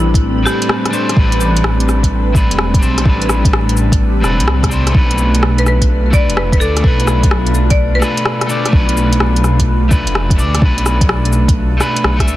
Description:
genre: future garage.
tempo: 127 BPM.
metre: 4/4.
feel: swing 66% on 16ths.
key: unclear.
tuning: A4 = 440 Hz.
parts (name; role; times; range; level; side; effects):
buzzing marimba with hard mallets; melody; 0.0-0.9, 5.6-8.6 s; G4 to D5; -21 LUFS; left 1 dB; tape echo.
electric guitar at the edge of break-up; accompaniment; 0.0-12.4 s; G3 to E5; -18 LUFS; left 1 dB; sidechain pumping, ping-pong delay.
airy breathy pad; sustained chords; 0.0-12.4 s; A2 to B4; -22 LUFS; right 2 dB; chorus, phaser, sidechain pumping.
dark detuned saw bass; bass; 0.0-12.4 s; E1 to D2; -15 LUFS; equal; sidechain pumping.
electronic kick drum; drums; 0.1-12.3 s; none; -13 LUFS; equal; none.
organic electronic drum kit; drums; 0.2-12.4 s; cabasa, hi-hat, rim click; -20 LUFS; left 1 dB; soft clipping on snare.
room: light reverb.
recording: dense, heavily limited modern master, vinyl crackle.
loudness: -11 LUFS.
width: side -15 dB against mid.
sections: 0.0-12.4 A section.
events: none.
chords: 0.0 Am11; 5.0 Bm7b5.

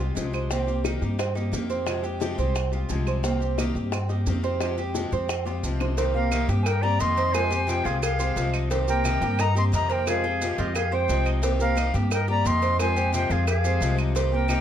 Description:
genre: latin, Cuban son and guajira.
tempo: 176 BPM.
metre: 4/4.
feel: straight.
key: C minor.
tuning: A4 = 441 Hz.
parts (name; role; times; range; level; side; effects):
picked steel-string acoustic guitar; accompaniment; 0.0-14.6 s; C3 to G4; -30 LUFS; left 2 dB; none.
Cuban tres; arpeggios; 0.0-14.6 s; C4 to G5; -31 LUFS; right 7 dB; none.
upright bass; bass; 0.0-14.6 s; C2 to G2; -26 LUFS; equal; none.
bongos and cowbell; percussion; 0.0-14.6 s; none; -34 LUFS; left 5 dB; none.
maracas; percussion; 0.0-14.6 s; none; -40 LUFS; right 6 dB; none.
claves; percussion; 0.3-14.6 s; none; -37 LUFS; right 8 dB; none.
alto recorder; melody; 6.1-14.6 s; Eb5 to C6; -28 LUFS; left 3 dB; none.
bright reedy concert flute; second line; 6.2-14.6 s; G4 to Eb5; -32 LUFS; right 4 dB; none.
room: light reverb.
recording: dark, warm production.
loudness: -22 LUFS.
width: side -10 dB against mid.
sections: 0.0-6.0 A section; 6.0-14.6 B section.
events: drum fill 5.5-6.0.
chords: 0.0 Fmadd9; 0.5 Cm7; 1.9 Fmadd9; 3.2 Cm7; 4.6 Fmadd9; 6.0 Cm7; 7.3 Fmadd9; 8.7 Cm7; 10.1 Fmadd9; 11.4 Cm7; 12.8 Fmadd9.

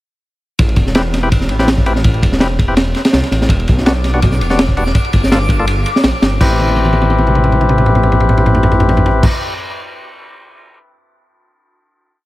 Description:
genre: drum and bass, jungle.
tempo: 165 BPM.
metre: 4/4.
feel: straight.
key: A minor.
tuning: A4 = 439 Hz.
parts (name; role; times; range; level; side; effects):
detuned saw bass; bass; 0.6-9.3 s; E1 to C2; -16 LUFS; equal; tube saturation.
crunchy breakbeat drum kit; drums; 0.6-10.8 s; crash cymbal, kick drum, ride cymbal, snare drum, toms; -13 LUFS; equal; none.
percussive tonewheel organ; stabs; 1.0-9.3 s; G3 to B4; -17 LUFS; left 2 dB; overdrive, dub echo.
twinkling granular texture; texture; 3.9-6.4 s; D6; -25 LUFS; left 2 dB; built-in reverb.
room: studio reverb.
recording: none.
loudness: -10 LUFS.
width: side -17 dB against mid.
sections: 0.6-6.4 drop; 6.4-9.3 final chord.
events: drop 0.6-6.4; drum fill 6.6-9.2.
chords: 0.6 Am7; 3.5 Em7; 5.0 Gm7; 6.4 Am7.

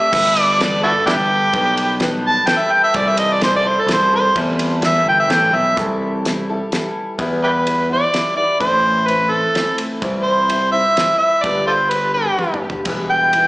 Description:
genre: folk rock and heartland rock.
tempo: 127 BPM.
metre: 3/4.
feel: straight.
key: unclear.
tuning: A4 = 441 Hz.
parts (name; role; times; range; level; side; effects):
overdriven harmonica; melody; 0.0-13.5 s; D4 to A5; -15 LUFS; equal; slapback echo, tape echo.
picked twelve-string acoustic guitar; accompaniment; 0.0-13.5 s; E2 to A4; -24 LUFS; left 1 dB; slapback echo.
picked electric bass; bass; 0.1-13.5 s; E1 to E2; -23 LUFS; equal; none.
damped 70s drum kit; drums; 0.1-13.4 s; crash cymbal, hi-hat, kick drum, ride cymbal, snare drum, splash cymbal, toms; -25 LUFS; equal; none.
room: moderate club reverb, RT60 0.5 s.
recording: live gig heard through the venue's PA, club reverb, small speaker sound.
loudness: -14 LUFS.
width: side -20 dB against mid.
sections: 0.0-5.8 A section; 5.8-7.2 B section; 7.2-13.5 C section.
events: harmonica solo 0.0-5.8; drum fill 12.4-12.9.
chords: 0.1 Gadd9; 2.9 C6; 7.2 Em; 8.6 Am; 10.0 C; 11.4 G; 12.9 Em.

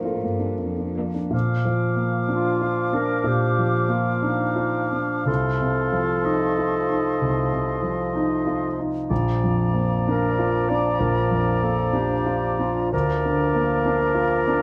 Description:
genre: classical, romantic movement for piano and orchestra.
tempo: 62 BPM (dotted quarters).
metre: 12/8.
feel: uneven beats, rubato.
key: Bb major.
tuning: A4 = 441 Hz.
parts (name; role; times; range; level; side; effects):
warm concert grand piano; melody; 0.0-14.6 s; Bb1 to C5; -25 LUFS; equal; none.
dark symphonic viola section; accompaniment; 0.0-1.2 s; Bb3 to D4; -39 LUFS; equal; none.
warm symphonic cello section; bass; 0.0-1.3 s; F2 to A2; -33 LUFS; equal; none.
hollow concert flute; second line; 1.3-14.6 s; Bb5 to D6; -34 LUFS; equal; none.
warm oboe; second line; 1.3-14.6 s; D5 to F5; -33 LUFS; equal; none.
warm bassoon; accompaniment; 1.3-14.6 s; F3; -31 LUFS; equal; none.
mellow clarinet; second line; 2.3-14.6 s; D4 to D5; -28 LUFS; equal; none.
room: light reverb.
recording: close, detailed microphones.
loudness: -23 LUFS.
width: mono.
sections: 0.0-1.3 A section; 1.3-14.6 B section.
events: none.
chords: 0.0 Bb.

